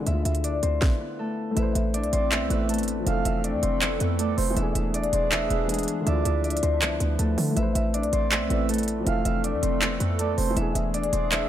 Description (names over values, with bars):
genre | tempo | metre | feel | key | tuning
hip hop, trap | 160 BPM | 4/4 | half-time | A harmonic minor | A4 = 441 Hz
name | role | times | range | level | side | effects
Celtic harp | melody | 0.0-11.5 s | G#3 to E5 | -28 LUFS | left 3 dB | low-pass filter
dark grand piano | accompaniment | 0.0-11.5 s | D3 to D5 | -32 LUFS | left 3 dB | low-pass filter
short 808-style bass | bass | 0.0-11.5 s | E1 to D3 | -26 LUFS | equal | none
trap drum kit | drums | 0.1-11.4 s | handclaps, hi-hat, kick drum, snare drum | -28 LUFS | right 1 dB | none
hollow soft pad | sustained chords | 2.1-11.5 s | E3 to E5 | -33 LUFS | right 3 dB | chorus
breathy flute-like synth lead | second line | 2.1-11.5 s | C5 to F5 | -33 LUFS | right 9 dB | chorus, tremolo, ping-pong delay
room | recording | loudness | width
digital ambience | none | -22 LUFS | side -11 dB against mid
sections
0.0-1.6 A section; 1.6-11.5 B section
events
none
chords
0.1 Dmadd9; 1.6 Amadd9; 3.1 Fmaj7; 4.6 E7; 6.1 Dmadd9; 7.6 Amadd9; 9.1 Fmaj7; 10.6 E7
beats
| 0.07 0.44 0.82 1.19 | 1.57 1.94 2.32 2.69 | 3.07 3.44 3.82 4.19 | 4.57 4.94 5.32 5.69 | 6.07 6.44 6.82 7.19 | 7.57 7.94 8.32 8.69 | 9.07 9.44 9.82 10.19 | 10.57 10.94 11.32